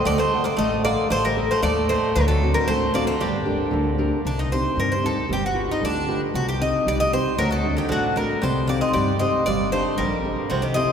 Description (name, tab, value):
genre	greek folk, Greek bouzouki band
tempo	115 BPM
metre	2/4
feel	straight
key	G harmonic minor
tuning	A4 = 439 Hz
part	Greek bouzouki	melody	0.0-10.9 s	D4 to Eb5	-24 LUFS	equal	none
part	Greek bouzouki	second line	0.0-3.9, 7.4-10.9 s	C3 to C4	-29 LUFS	equal	none
part	fingerpicked steel-string acoustic guitar	accompaniment	0.0-10.9 s	C3 to F#5	-24 LUFS	equal	none
part	upright bass	bass	0.0-10.9 s	G1 to G2	-26 LUFS	equal	none
room	wet cathedral reverb, RT60 6.5 s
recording	recorded in a church or concert hall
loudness	-19 LUFS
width	side -7 dB against mid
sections	0.0-4.2 A section; 4.2-10.9 B section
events	none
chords	0.0 D; 1.1 Adim; 2.2 D7; 3.2 Gm; 4.2 Cm; 5.3 G7; 6.3 Cm; 7.4 D; 8.4 Cm; 9.5 Gm